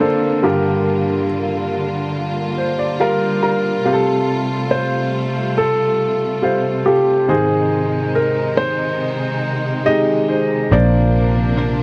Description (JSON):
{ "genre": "pop", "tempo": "70 BPM", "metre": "4/4", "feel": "straight", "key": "unclear", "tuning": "A4 = 440 Hz", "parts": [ { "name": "clear grand piano", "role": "melody", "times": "0.0-11.8 s", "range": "G4 to Eb5", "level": "-22 LUFS", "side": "equal", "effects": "none" }, { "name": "clear concert grand piano", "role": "accompaniment", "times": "0.0-11.8 s", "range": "G2 to Bb5", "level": "-21 LUFS", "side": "equal", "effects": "none" }, { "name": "clear studio string section", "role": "sustained chords", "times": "0.0-11.8 s", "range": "C3 to F4", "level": "-25 LUFS", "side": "equal", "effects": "none" }, { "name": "direct-recorded clean electric guitar", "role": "arpeggios", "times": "10.7-11.8 s", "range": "Bb2 to Bb4", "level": "-27 LUFS", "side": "equal", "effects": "tremolo" }, { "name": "vintage muted fingered electric bass", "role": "bass", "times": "10.7-11.8 s", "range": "Bb1", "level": "-18 LUFS", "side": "equal", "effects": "none" } ], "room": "small room ambience", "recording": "dry, close 1970s-style studio recording", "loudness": "-18 LUFS", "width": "mono", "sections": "0.0-11.8 A section", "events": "grand piano fill 2.1-3.9", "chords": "0.4 Gm7; 3.9 Fadd9; 7.3 Ab; 10.7 Bbadd9" }